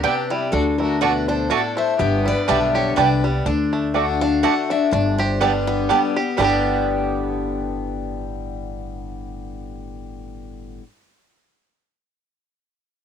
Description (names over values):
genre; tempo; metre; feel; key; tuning
bluegrass; 123 BPM; 3/4; swing 55% on 8ths; G major; A4 = 440 Hz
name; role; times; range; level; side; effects
bluegrass banjo; melody; 0.0-10.8 s; G3 to G4; -26 LUFS; right 3 dB; none
picked steel-string acoustic guitar; melody; 0.0-10.8 s; G4 to F#5; -26 LUFS; left 2 dB; none
dark fiddle; second line; 0.0-3.2 s; E4 to C5; -28 LUFS; left 6 dB; cassette tape
picked steel-string acoustic guitar; accompaniment; 0.0-10.8 s; G2 to G4; -23 LUFS; left 6 dB; cassette tape
mandolin; stabs; 0.0-10.8 s; A3 to A5; -21 LUFS; right 9 dB; cassette tape
upright bass; bass; 0.0-10.8 s; G1 to D2; -26 LUFS; right 2 dB; none
room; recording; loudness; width
wet booth ambience, RT60 0.2 s; home recording on cassette; -17 LUFS; side -8 dB against mid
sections
0.0-3.5 A section; 3.5-6.4 B section; 6.4-9.3 C section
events
none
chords
0.0 G; 0.5 D; 2.0 Gadd9; 3.5 D; 4.9 Gadd9